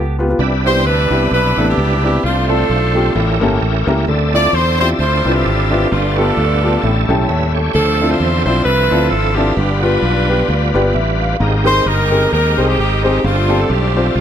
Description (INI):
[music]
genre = gospel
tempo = 131 BPM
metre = 4/4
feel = swing 56% on 8ths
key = C major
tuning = A4 = 440 Hz
[part]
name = fingered electric bass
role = bass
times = 0.0-14.2 s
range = G1 to E2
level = -17 LUFS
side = equal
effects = none
[part]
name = warm upright piano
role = accompaniment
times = 0.2-14.1 s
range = G2 to A5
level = -18 LUFS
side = left 1 dB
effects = none
[part]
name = bright tonewheel organ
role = sustained chords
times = 0.4-14.2 s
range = C3 to E5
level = -20 LUFS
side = right 2 dB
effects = slow rotary speaker, overdrive, chorus vibrato
[part]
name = edgy saxophone section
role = melody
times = 0.7-14.2 s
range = A3 to D5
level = -17 LUFS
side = right 1 dB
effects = none
[sound]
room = light reverb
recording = none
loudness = -12 LUFS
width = side -9 dB against mid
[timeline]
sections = 0.4-14.2 A section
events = upright piano fill 6.8-7.7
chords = 0.4 Cmaj9; 2.2 F6/C; 3.2 A7b9; 4.1 Dm9; 5.9 G9; 6.8 A7; 7.7 Dm9; 9.6 G7; 11.4 Abmaj9; 13.2 G9sus4